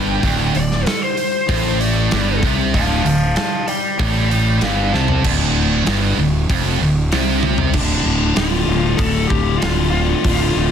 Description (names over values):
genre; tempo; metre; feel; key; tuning
hard rock; 96 BPM; 4/4; straight; D minor; A4 = 442 Hz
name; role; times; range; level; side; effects
smooth overdriven lead guitar; melody; 0.0-10.7 s; D4 to A5; -22 LUFS; equal; none
scooped high-gain guitar; riff; 0.0-7.7 s; D2 to C3; -20 LUFS; right 8 dB; distortion
tight distorted guitar; riff; 0.0-10.7 s; D2 to D3; -22 LUFS; left 9 dB; distortion
fuzz fingered electric bass; bass; 0.0-10.7 s; D1 to C2; -20 LUFS; equal; overdrive
big rock drum kit; drums; 0.2-10.4 s; crash cymbal, hi-hat, kick drum, snare drum, toms; -21 LUFS; equal; none
room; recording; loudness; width
light reverb; dense, heavily limited modern master; -14 LUFS; side -8 dB against mid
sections
0.0-5.2 A section; 5.2-7.8 B section; 7.8-10.7 C section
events
lead electric guitar solo 0.0-5.2; drum fill 4.9-5.2, 7.4-7.8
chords
0.0 Dm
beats
| 0.24 0.86 1.49 2.12 | 2.74 3.37 4.00 4.62 | 5.25 5.88 6.50 7.13 | 7.75 8.38 9.00 9.63 | 10.25